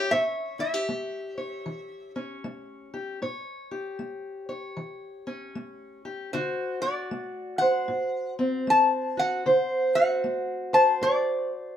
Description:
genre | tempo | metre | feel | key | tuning
acoustic country blues, solo or duo | 77 BPM | 4/4 | swing 63% on 8ths | A mixolydian | A4 = 437 Hz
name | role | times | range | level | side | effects
metal-body resonator slide guitar | melody | 0.0-11.8 s | C5 to A5 | -25 LUFS | left 2 dB | none
fingerpicked steel-string acoustic guitar | accompaniment | 0.0-11.8 s | A2 to C#5 | -28 LUFS | right 1 dB | none
room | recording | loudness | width
moderate studio reverb, RT60 0.6 s | band playing live in one room | -24 LUFS | side -10 dB against mid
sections
0.0-11.8 A section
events
none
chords
0.0 A7; 6.3 D7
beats
| 0.09 0.87 1.65 2.43 | 3.21 3.99 4.77 5.55 | 6.33 7.11 7.89 8.68 | 9.46 10.23 11.01

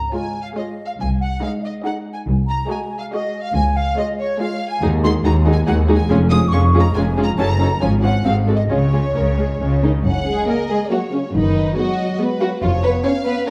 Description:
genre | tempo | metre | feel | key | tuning
cinematic, playful, whimsical film cue | 140 BPM | 3/4 | straight | Db major, F# major from 10.0 s | A4 = 441 Hz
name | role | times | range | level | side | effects
small flute group | second line | 0.0-9.8 s | Db5 to Eb6 | -27 LUFS | equal | none
rich studio double bass section | bass | 0.0-13.0 s | F1 to Eb2 | -22 LUFS | equal | none
warm studio cello section | bass | 0.0-13.0 s | C2 to Db3 | -23 LUFS | equal | none
rich studio violin section | melody | 0.1-13.5 s | B4 to Eb6 | -32 LUFS | equal | none
dark studio violin section | second line | 0.1-13.5 s | C#4 to Eb5 | -26 LUFS | equal | none
warm studio viola section | accompaniment | 0.1-13.5 s | F3 to Gb4 | -25 LUFS | equal | none
dark French horn section | sustained chords | 9.8-13.5 s | C#3 to C#4 | -25 LUFS | equal | none
room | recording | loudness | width
wet recital hall reverb, RT60 1.3 s | dark, warm production | -18 LUFS | mono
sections
0.0-10.0 A section; 10.0-13.5 B section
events
none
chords
0.0 Db; 1.0 Ab/C; 2.3 Ab7/C; 3.5 Db; 4.8 Ab5/Eb; 6.1 Db/F; 7.4 Ebm7b5/Gb; 7.8 Db/Ab; 8.3 Ab; 8.7 Db5; 10.0 F#; 11.3 G#m7/F#; 12.6 C#7/E#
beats
0.13 0.57 | 1.00 1.42 1.85 | 2.27 2.70 3.13 | 3.55 3.97 4.40 | 4.82 5.25 5.67 | 6.10 6.52 6.95 | 7.38 7.81 8.25 | 8.70 9.16 9.60 | 10.04 10.48 10.91 | 11.34 11.77 12.20 | 12.63 13.05 13.48

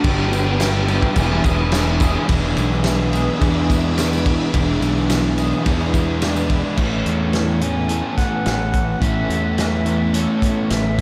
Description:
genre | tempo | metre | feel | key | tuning
rock, shoegaze and dream pop | 107 BPM | 4/4 | straight | A major | A4 = 439 Hz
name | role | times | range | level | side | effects
reedy silver concert flute | melody | 0.0-1.7, 6.2-11.0 s | C#5 to G#5 | -32 LUFS | equal | delay
string machine, full ensemble | sustained chords | 0.0-6.7 s | B4 to D6 | -32 LUFS | equal | phaser, ensemble chorus
electric guitar through a small old amp | arpeggios | 0.0-11.0 s | E3 to A4 | -33 LUFS | equal | ensemble chorus, delay
overdriven semi-hollow guitar | riff | 0.0-11.0 s | E2 to B4 | -26 LUFS | equal | subtle chorus
overdriven semi-hollow guitar | riff | 0.0-11.0 s | A2 to G#4 | -26 LUFS | equal | reverse reverb
fuzz fingered electric bass | bass | 0.0-11.0 s | E1 to E2 | -24 LUFS | equal | overdrive
loose indie drum kit | drums | 0.0-11.0 s | crash cymbal, hi-hat, kick drum, ride cymbal, snare drum | -24 LUFS | equal | none
tambourine | percussion | 0.3-6.5 s | none | -41 LUFS | equal | none
room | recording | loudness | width
moderate huge ambient reverb, RT60 7.9 s | dreamy mix soaked in reverb | -19 LUFS | mono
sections
0.0-2.3 A section; 2.3-6.8 B section; 6.8-11.0 C section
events
none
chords
0.1 G6; 1.2 E7; 6.8 Aadd9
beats
| 0.06 0.61 1.18 1.74 | 2.29 2.86 3.42 3.98 | 4.54 5.10 5.66 6.22 | 6.78 7.34 7.91 8.47 | 9.03 9.59 10.15 10.71

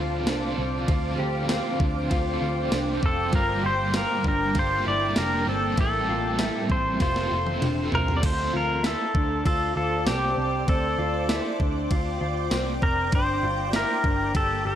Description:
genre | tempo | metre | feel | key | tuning
dream pop | 98 BPM | 4/4 | straight | unclear | A4 = 439 Hz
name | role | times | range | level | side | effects
overdriven electric guitar | accompaniment | 0.0-8.7 s | G2 to A4 | -32 LUFS | right 2 dB | tremolo, lush chorus, shimmer reverb
granular cloud pad | sustained chords | 0.0-14.8 s | Bb3 to D6 | -32 LUFS | equal | built-in reverb, shimmer reverb
mellow electric guitar | arpeggios | 0.0-14.8 s | C4 to G4 | -31 LUFS | left 2 dB | wide subtle chorus, analog delay, shimmer reverb
vintage muted picked electric bass | bass | 0.0-14.8 s | E1 to D2 | -30 LUFS | equal | none
gated 80s digital drum machine | drums | 0.3-14.5 s | crash cymbal, kick drum, ride cymbal, snare drum, tambourine, toms | -26 LUFS | equal | gated reverb, gated reverb snare
pedal steel guitar | melody | 3.1-14.8 s | G4 to D5 | -26 LUFS | equal | shimmer reverb
room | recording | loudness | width
light reverb, digital ambience | dry, gritty hardware recording | -22 LUFS | side -10 dB against mid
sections
0.0-8.2 A section; 8.2-14.8 B section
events
drum fill 7.0-8.2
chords
0.0 Dm7; 3.3 Gmadd9; 5.8 Am7; 7.0 Fadd9; 8.2 Dm7; 13.1 Gmadd9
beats
0.27 | 0.88 1.49 2.10 2.72 | 3.33 3.94 4.55 5.17 | 5.78 6.39 7.00 7.62 | 8.23 8.84 9.45 10.06 | 10.68 11.29 11.90 12.51 | 13.12 13.74 14.35

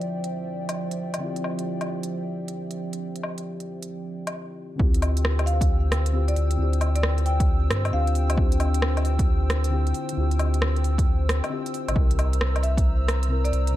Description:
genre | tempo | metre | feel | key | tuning
future garage | 134 BPM | 4/4 | swing 64% on 16ths | D minor | A4 = 440 Hz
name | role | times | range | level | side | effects
muted felt-like synth keys | accompaniment | 0.0-13.8 s | C3 to Bb4 | -32 LUFS | left 4 dB | chorus, vintage 12-bit sampler grit, sidechain pumping, low-pass filter, ping-pong delay
dark analog pad | sustained chords | 0.0-13.8 s | F3 to E6 | -32 LUFS | right 2 dB | chorus, sidechain pumping
organic electronic drum kit | drums | 0.0-13.7 s | hi-hat, rim click, woodblock | -30 LUFS | equal | none
warm sub bass | bass | 4.8-13.7 s | A1 to G2 | -22 LUFS | equal | tube saturation, sidechain pumping
electronic kick drum | drums | 4.8-12.8 s | none | -22 LUFS | equal | overdrive
marimba with medium mallets | melody | 5.5-8.6, 12.6-13.7 s | D5 to G5 | -33 LUFS | left 1 dB | ping-pong delay
room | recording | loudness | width
light reverb | dark, warm production | -22 LUFS | side -14 dB against mid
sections
0.0-4.8 A section; 4.8-13.8 B section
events
filter sweep on synth keys 0.0-4.8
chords
0.0 Dm11; 12.0 C7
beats
0.32 0.77 | 1.22 1.66 2.11 2.56 | 3.01 3.45 3.90 4.35 | 4.80 5.25 5.69 6.14 | 6.59 7.04 7.48 7.93 | 8.38 8.83 9.27 9.72 | 10.17 10.62 11.07 11.51 | 11.96 12.41 12.86 13.30 | 13.75

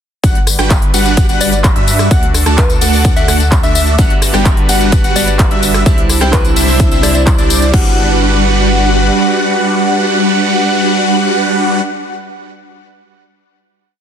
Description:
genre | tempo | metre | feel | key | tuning
EDM, festival progressive house | 128 BPM | 4/4 | straight | G major | A4 = 441 Hz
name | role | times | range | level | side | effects
lush unison pad | sustained chords | 0.4-11.8 s | C3 to B4 | -22 LUFS | right 1 dB | chorus, sidechain pumping
wide unison lead | arpeggios | 0.2-11.8 s | D5 to A5 | -19 LUFS | equal | sidechain pumping, ping-pong delay
big supersaw lead | riff | 0.2-11.8 s | G3 to A5 | -15 LUFS | right 1 dB | phaser, vintage 12-bit sampler grit, sidechain pumping, ping-pong delay
saturated sub bass | bass | 0.2-9.1 s | G1 to G2 | -16 LUFS | equal | tube saturation, sidechain pumping
big-room dance drum kit | drums | 0.2-7.8 s | crash cymbal, handclaps, hi-hat, rim click, tambourine | -18 LUFS | left 2 dB | overdrive
electronic kick drum | drums | 0.2-7.8 s | none | -12 LUFS | equal | overdrive
soft struck synth lead | melody | 1.4-7.2 s | B4 to E5 | -23 LUFS | left 3 dB | chorus, cassette tape, ping-pong delay
picked steel-string acoustic guitar | accompaniment | 4.0-11.8 s | G3 to F#4 | -21 LUFS | right 3 dB | sidechain pumping, ping-pong delay
room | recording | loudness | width
light reverb, digital ambience | dense, heavily limited modern master | -9 LUFS | side -8 dB against mid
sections
0.2-7.7 drop; 7.7-11.5 final chord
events
drop 0.2-7.7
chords
0.2 Gmaj7; 2.1 D; 4.0 Gmaj7; 5.9 Cadd9; 7.7 Gmaj7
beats
| 0.24 0.70 1.17 1.64 | 2.11 2.58 3.05 3.52 | 3.99 4.46 4.92 5.39 | 5.86 6.33 6.80 7.27 | 7.74 8.21 8.67 9.14 | 9.61 10.08 10.55 11.02

